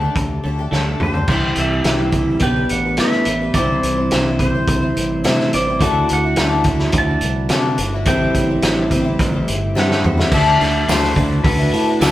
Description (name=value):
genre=folk rock and heartland rock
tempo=106 BPM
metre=4/4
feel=straight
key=unclear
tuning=A4 = 437 Hz
part: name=pedal steel guitar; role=melody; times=0.0-12.1 s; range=A4 to A5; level=-23 LUFS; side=right 1 dB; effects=none
part: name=picked twelve-string acoustic guitar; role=accompaniment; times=0.0-12.1 s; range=A2 to C5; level=-21 LUFS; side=left 3 dB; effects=none
part: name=twelve-string electric guitar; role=riff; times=0.0-12.1 s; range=A2 to C5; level=-22 LUFS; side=right 1 dB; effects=none
part: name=modern bright fingered electric bass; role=bass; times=0.0-12.1 s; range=G1 to C3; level=-21 LUFS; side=equal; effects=none
part: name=loose indie drum kit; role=drums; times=0.2-12.1 s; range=crash cymbal, hi-hat, kick drum, snare drum, toms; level=-19 LUFS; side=equal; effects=none
part: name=tambourine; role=percussion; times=10.9-12.1 s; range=none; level=-31 LUFS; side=right 7 dB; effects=none
room=moderate stone room reverb, RT60 1.1 s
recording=band playing live in one room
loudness=-14 LUFS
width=side -14 dB against mid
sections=0.0-1.3 A section; 1.3-10.3 B section; 10.3-12.1 C section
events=drum fill 0.7-1.3, 9.8-10.3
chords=0.0 Dsus4; 1.3 C; 2.4 G; 3.6 C; 5.8 Dadd9; 8.1 Am7; 10.3 Dadd9